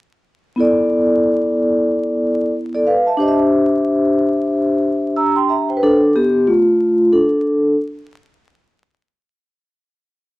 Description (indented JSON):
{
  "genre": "hip hop",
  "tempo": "92 BPM",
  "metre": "4/4",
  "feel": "swing 61% on 16ths",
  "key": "D dorian",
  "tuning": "A4 = 440 Hz",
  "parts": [
    { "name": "vibraphone with soft mallets", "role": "solo", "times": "0.6-7.7 s", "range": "A3 to E6", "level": "-13 LUFS", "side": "equal", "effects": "none" }
  ],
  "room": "wet studio reverb, RT60 0.6 s",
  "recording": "dark, warm production, vinyl crackle",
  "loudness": "-13 LUFS",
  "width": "side -18 dB against mid",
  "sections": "0.6-5.8 A section; 5.8-10.4 B section",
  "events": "vibraphone solo 5.8-10.4",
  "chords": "0.6 Dsus2; 3.2 C; 5.8 Dm; 8.4 N.C.",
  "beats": "| 0.60 1.25 1.90 2.56 | 3.21 3.86 4.51 5.16 | 5.82 6.47 7.12"
}